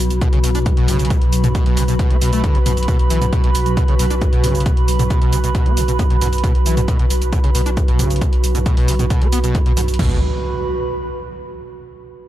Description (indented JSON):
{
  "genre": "driving peak-time techno",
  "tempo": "135 BPM",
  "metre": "4/4",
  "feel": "straight",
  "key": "unclear",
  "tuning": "A4 = 439 Hz",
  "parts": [
    { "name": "saturated sub bass", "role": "bass", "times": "0.0-10.2 s", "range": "B1", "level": "-20 LUFS", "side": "equal", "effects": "overdrive, sidechain pumping, low-pass filter" },
    { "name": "swarming drone", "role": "drone", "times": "0.0-10.0 s", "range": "B2 to F#3", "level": "-26 LUFS", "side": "equal", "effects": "built-in reverb, sidechain pumping" },
    { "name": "warbly tape-like pad", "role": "texture", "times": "0.0-11.7 s", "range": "F#4 to B5", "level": "-24 LUFS", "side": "right 2 dB", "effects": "chorus, built-in reverb, sidechain pumping" },
    { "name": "punchy analog drum machine", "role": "drums", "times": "0.1-10.0 s", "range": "hi-hat, shaker, toms", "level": "-25 LUFS", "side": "right 1 dB", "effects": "sidechain pumping on hats, sidechain pumping on perc, sidechain pumping on toms" },
    { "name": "screaming distorted acid line", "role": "riff", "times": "0.2-10.2 s", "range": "B2 to D4", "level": "-23 LUFS", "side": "equal", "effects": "distortion, ensemble chorus, sidechain pumping, tape echo" },
    { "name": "punchy analog drum machine", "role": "drums", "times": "0.2-10.1 s", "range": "crash cymbal, kick drum, toms", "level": "-17 LUFS", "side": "equal", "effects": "none" },
    { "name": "impact", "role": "sound effects", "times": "10.0-11.8 s", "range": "none", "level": "-25 LUFS", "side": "equal", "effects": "none" }
  ],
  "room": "little or no reverb",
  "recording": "dark, warm production",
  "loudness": "-14 LUFS",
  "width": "side -13 dB against mid",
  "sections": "0.0-10.0 A section; 10.0-11.8 B section",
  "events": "none",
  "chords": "0.0 B5",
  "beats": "0.21 0.66 | 1.10 1.55 1.99 2.44 | 2.88 3.33 3.77 4.21 | 4.66 5.10 5.55 5.99 | 6.44 6.88 7.33 7.77 | 8.21 8.66 9.10 9.55 | 9.99 10.44 10.88 11.33"
}